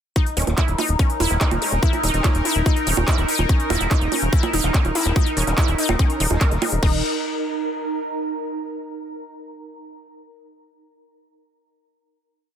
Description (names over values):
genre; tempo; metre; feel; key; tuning
psychedelic trance; 144 BPM; 4/4; straight; unclear; A4 = 439 Hz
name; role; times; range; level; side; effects
bubbling stepped-filter texture; sustained chords; 0.5-6.9 s; Eb4 to Bb4; -29 LUFS; left 1 dB; chorus, built-in reverb, sidechain pumping
wide unison pluck; riff; 0.2-7.0 s; Db4 to Bb4; -25 LUFS; moving between left 4 dB and right 3 dB; auto-pan, sidechain pumping, dub echo
big-room dance drum kit; drums; 0.2-6.9 s; bongos, crash cymbal, handclaps, hi-hat; -25 LUFS; right 2 dB; overdrive, studio ambience
electronic kick drum; drums; 0.2-6.9 s; none; -18 LUFS; equal; overdrive, studio ambience
ethereal airy pad; texture; 1.0-8.5 s; Eb4 to Bb5; -28 LUFS; right 2 dB; ensemble chorus, built-in reverb, sidechain pumping
vowel-sweep wobble bass; second line; 0.4-6.7 s; Ab3 to Db4; -35 LUFS; left 4 dB; lush chorus, sidechain pumping, high-pass filter, dub echo
plucky analog bass; bass; 0.4-7.0 s; Eb1; -22 LUFS; equal; none
room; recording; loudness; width
little or no reverb; dense, heavily limited modern master; -18 LUFS; side -9 dB against mid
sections
0.2-6.8 drop; 6.8-8.5 final chord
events
drop 0.2-6.8; band accent 6.4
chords
0.2 Eb5